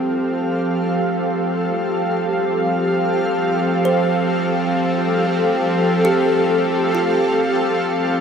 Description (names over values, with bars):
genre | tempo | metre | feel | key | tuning
ambient | free time | none | none | unclear | A4 = 440 Hz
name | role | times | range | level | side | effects
granular cloud pad | sustained chords | 0.0-8.2 s | G4 to F5 | -18 LUFS | equal | built-in reverb, shimmer reverb
bowed-like drone | drone | 0.0-8.2 s | F3 to C4 | -21 LUFS | equal | built-in reverb
kalimba | arpeggios | 3.9-8.2 s | F4 to C5 | -25 LUFS | right 3 dB | diffuse ambient delay, shimmer reverb
room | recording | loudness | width
wet huge ambient reverb, RT60 7.9 s | none | -16 LUFS | side -7 dB against mid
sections
0.0-8.2 A section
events
none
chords
0.0 C5/F